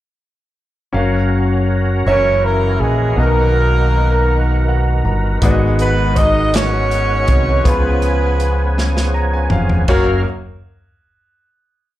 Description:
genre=slow gospel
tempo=54 BPM (dotted quarters)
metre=6/8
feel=straight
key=F# major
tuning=A4 = 440 Hz
part: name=bright grand piano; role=accompaniment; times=0.9-10.2 s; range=F#2 to A#5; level=-22 LUFS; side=left 3 dB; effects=slapback echo
part: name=fingered electric bass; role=bass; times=0.9-10.2 s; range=E#1 to C#2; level=-16 LUFS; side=equal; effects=none
part: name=overdriven tonewheel organ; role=sustained chords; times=1.0-10.2 s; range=D#3 to E#5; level=-23 LUFS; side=right 2 dB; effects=slow rotary speaker, chorus vibrato
part: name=clear horn section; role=melody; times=2.1-10.2 s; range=G#3 to D#5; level=-21 LUFS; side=left 2 dB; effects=slapback echo
part: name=warm alto saxophone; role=melody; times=2.1-10.2 s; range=F#4 to D#5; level=-20 LUFS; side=right 3 dB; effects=slapback echo
part: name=natural country drum kit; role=drums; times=5.4-10.1 s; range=crash cymbal, hi-hat, kick drum, snare drum, toms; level=-18 LUFS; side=equal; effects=none
room=little or no reverb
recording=live gig heard through the venue's PA, club reverb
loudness=-13 LUFS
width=side -14 dB against mid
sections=0.9-9.9 verse; 9.9-12.0 final chord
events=grand piano fill 4.3-5.4, 8.8-9.9; drum fill 8.8-9.9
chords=0.9 F#maj7; 2.1 F#7; 3.2 Bmaj7; 5.4 G#m7; 7.7 C#7; 9.9 F#maj7

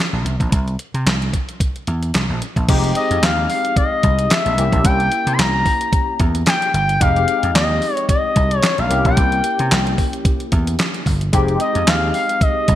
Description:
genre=early-eighties boogie funk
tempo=111 BPM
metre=4/4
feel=swing 56% on 16ths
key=F minor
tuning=A4 = 440 Hz
part: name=vintage slap bass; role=bass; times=0.1-12.8 s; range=F1 to C3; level=-19 LUFS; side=equal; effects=none
part: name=crisp 8-bit digital drum machine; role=drums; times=0.3-12.8 s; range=crash cymbal, handclaps, hi-hat, kick drum, snare drum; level=-18 LUFS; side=equal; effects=gated reverb
part: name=barky tine electric piano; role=accompaniment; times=2.7-12.8 s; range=Ab3 to G4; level=-24 LUFS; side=left 2 dB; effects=overdrive, ensemble chorus
part: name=expressive portamento lead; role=melody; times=3.0-12.8 s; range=Eb5 to C6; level=-18 LUFS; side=left 2 dB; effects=chorus
room=light reverb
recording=bright 1980s-style digital production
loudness=-15 LUFS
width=side -12 dB against mid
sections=0.0-2.7 A section; 2.7-12.8 B section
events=none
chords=0.3 C7(no3); 2.7 Fm9; 4.6 C7b9; 7.0 Fm9; 8.9 C7b9; 11.3 Fm9

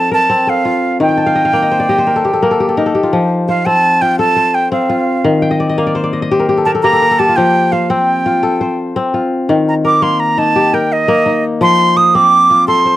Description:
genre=west african traditional, West African string and xylophone music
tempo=113 BPM (dotted quarters)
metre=12/8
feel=straight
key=F mixolydian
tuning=A4 = 440 Hz
part: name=breathy bright concert flute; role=melody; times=0.0-13.0 s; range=Eb5 to Eb6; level=-12 LUFS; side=right 2 dB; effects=none
part: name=kora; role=arpeggios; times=0.0-13.0 s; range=Eb3 to A5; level=-13 LUFS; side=left 2 dB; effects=none
room=little or no reverb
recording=dry, close 1970s-style studio recording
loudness=-10 LUFS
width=side -14 dB against mid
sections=0.0-3.1 A section; 3.1-13.0 B section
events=kora fill 1.1-3.1, 5.4-7.4; flute solo 3.1-13.0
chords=0.0 F; 1.0 Eb; 3.1 F; 5.2 Eb; 7.4 F; 9.5 Eb; 11.6 F

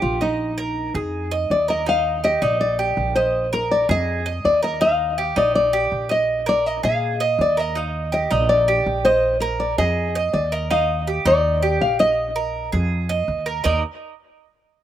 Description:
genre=latin, Cuban son and guajira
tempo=163 BPM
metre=4/4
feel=straight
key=Eb major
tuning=A4 = 441 Hz
part: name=nylon-string guitar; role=melody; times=0.0-13.2 s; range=Eb4 to F5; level=-20 LUFS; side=left 2 dB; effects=slapback echo
part: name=Cuban tres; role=arpeggios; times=0.0-13.8 s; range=Eb4 to Eb5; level=-24 LUFS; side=right 5 dB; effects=slapback echo
part: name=upright bass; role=bass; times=0.0-13.8 s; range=Bb1 to Bb2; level=-26 LUFS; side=right 1 dB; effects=none
room=little or no reverb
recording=recorded outdoors, with no room sound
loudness=-18 LUFS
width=side -11 dB against mid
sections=0.0-1.9 A section; 1.9-13.6 A section; 13.6-14.8 B section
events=none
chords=0.4 Bb7sus4; 1.9 Ebmaj9; 3.3 Bb7sus4; 4.8 Ebmaj9; 6.3 Bb7sus4; 7.8 Ebmaj9; 9.2 Bb7sus4; 10.7 Ebmaj9; 12.2 Bb7sus4; 13.6 Eb5

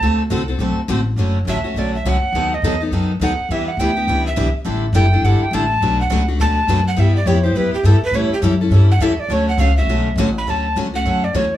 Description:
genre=acoustic string swing (jazz manouche)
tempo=207 BPM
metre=4/4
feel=swing 60% on 8ths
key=D major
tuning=A4 = 439 Hz
part: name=breathy alto recorder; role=melody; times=0.0-11.6 s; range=G4 to B5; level=-20 LUFS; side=right 1 dB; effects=none
part: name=picked acoustic archtop guitar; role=accompaniment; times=0.0-11.5 s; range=B2 to B4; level=-26 LUFS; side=right 5 dB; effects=none
part: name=picked steel-string acoustic guitar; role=accompaniment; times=0.0-11.4 s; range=B2 to A4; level=-22 LUFS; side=left 4 dB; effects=none
part: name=upright bass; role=bass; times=0.0-11.6 s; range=F#1 to A2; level=-17 LUFS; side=equal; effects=none
room=light reverb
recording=small room ambience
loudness=-15 LUFS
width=side -12 dB against mid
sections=0.0-1.2 A section; 1.2-10.5 A section; 10.5-11.6 B section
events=recorder solo 0.0-1.2, 1.2-10.5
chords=0.0 D7; 1.2 Dmaj7; 2.3 B7/D#; 3.5 Em7; 4.7 A7sus4; 5.8 Bm7; 7.0 G6; 8.1 A6; 9.3 Dmaj7

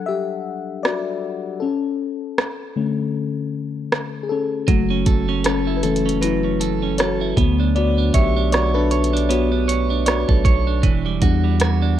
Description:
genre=contemporary R&B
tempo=78 BPM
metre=4/4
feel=swing 58% on 16ths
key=B minor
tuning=A4 = 438 Hz
part: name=mellow FM electric piano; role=accompaniment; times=0.0-12.0 s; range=D3 to F#5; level=-22 LUFS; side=left 6 dB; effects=chorus
part: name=smooth R&B drum kit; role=drums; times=0.8-11.8 s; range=hi-hat, kick drum, rim click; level=-20 LUFS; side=right 1 dB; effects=cassette tape
part: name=clean electric guitar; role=arpeggios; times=4.7-12.0 s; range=E3 to C#5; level=-23 LUFS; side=right 10 dB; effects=none
part: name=long sustained 808-style bass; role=bass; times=4.7-12.0 s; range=E1 to E2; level=-21 LUFS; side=right 1 dB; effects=none
room=little or no reverb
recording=home recording on cassette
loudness=-17 LUFS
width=side -11 dB against mid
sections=0.0-12.0 A section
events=break 0.0-4.7; FM electric piano solo 0.0-12.0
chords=0.0 Em9; 1.6 Aadd11; 4.7 F#m7; 7.4 Bm9; 10.8 Em9

